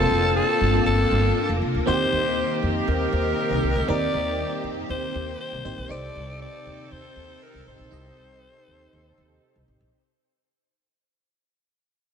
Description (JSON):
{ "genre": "pop", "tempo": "119 BPM", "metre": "4/4", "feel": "straight", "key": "C dorian", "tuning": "A4 = 440 Hz", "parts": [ { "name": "breathy alto saxophone", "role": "melody", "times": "0.0-9.6 s", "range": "A4 to D5", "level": "-27 LUFS", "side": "left 3 dB", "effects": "tape echo" }, { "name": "FM electric piano", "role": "accompaniment", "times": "0.0-10.0 s", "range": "Bb3 to Eb5", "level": "-29 LUFS", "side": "right 1 dB", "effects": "chorus, phaser" }, { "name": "string machine, full ensemble", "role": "sustained chords", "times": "0.0-9.9 s", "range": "C3 to G4", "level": "-30 LUFS", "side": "equal", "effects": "ensemble chorus" }, { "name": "clear horn section", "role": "stabs", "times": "0.0-9.6 s", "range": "C4 to A5", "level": "-31 LUFS", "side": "right 3 dB", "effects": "tape echo" }, { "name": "upright bass", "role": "bass", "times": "0.0-9.9 s", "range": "F1 to F2", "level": "-26 LUFS", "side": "equal", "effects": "none" } ], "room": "light reverb, small room ambience", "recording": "none", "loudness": "-21 LUFS", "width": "side -7 dB against mid", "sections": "0.0-9.9 A section", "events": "fade-out 0.0-9.9", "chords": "0.0 Fsus4; 1.9 Eb6; 5.9 Cm", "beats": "0.36 0.86 1.36 | 1.87 2.37 2.88 3.38 | 3.88 4.39 4.89 5.40 | 5.90 6.41 6.91 7.41 | 7.92 8.42 8.93 9.43" }